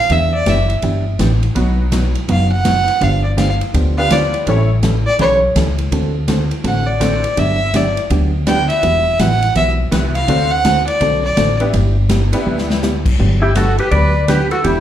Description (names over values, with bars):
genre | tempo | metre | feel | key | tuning
country, western swing | 165 BPM | 4/4 | swing 64% on 8ths | G major | A4 = 440 Hz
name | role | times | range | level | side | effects
rich fiddle | second line | 0.0-14.8 s | E4 to G5 | -17 LUFS | right 1 dB | slapback echo
hollow-body jazz guitar | accompaniment | 0.1-14.8 s | B2 to A4 | -20 LUFS | right 2 dB | slapback echo
upright bass | bass | 0.1-14.8 s | E1 to E2 | -17 LUFS | equal | none
swinging big-band drum kit | drums | 0.1-14.8 s | crash cymbal, hi-hat, kick drum, ride cymbal, snare drum | -22 LUFS | left 2 dB | none
honky-tonk upright piano | accompaniment | 1.6-4.7, 7.0-12.8 s | F#3 to C#5 | -23 LUFS | left 1 dB | slapback echo
clean lap steel guitar | melody | 13.4-14.8 s | E4 to D5 | -16 LUFS | left 1 dB | slapback echo
room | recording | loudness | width
moderate club reverb, RT60 0.5 s | live gig heard through the venue's PA, club reverb | -13 LUFS | side -11 dB against mid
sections
0.0-13.2 A section; 13.2-14.8 B section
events
fiddle solo 0.0-13.2; drum fill 12.5-12.8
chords
0.1 Em7; 1.6 B; 3.0 G7; 4.5 A7; 5.9 D7; 7.4 Gmaj7; 8.8 Emadd9; 10.3 D7; 11.7 G6; 13.2 Gmaj7